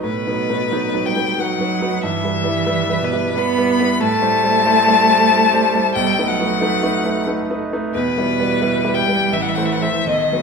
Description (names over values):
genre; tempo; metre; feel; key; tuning
classical, slow romantic movement for piano trio; 76-95 BPM; 3/4; rubato; E minor; A4 = 439 Hz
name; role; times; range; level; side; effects
rich violin; melody; 0.0-10.4 s; B4 to B5; -18 LUFS; left 6 dB; none
rich cello; second line; 0.0-10.4 s; B2 to B3; -21 LUFS; right 6 dB; none
clear grand piano; accompaniment; 0.0-10.4 s; A1 to C5; -21 LUFS; right 2 dB; none
room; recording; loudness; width
wet scoring stage reverb, RT60 1.7 s; minimal, uncompressed stereo recording; -15 LUFS; side -5 dB against mid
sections
0.0-10.4 A section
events
none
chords
0.0 B7/A; 2.0 Em/G; 4.0 Am7; 6.0 B7; 7.9 Em; 9.3 Am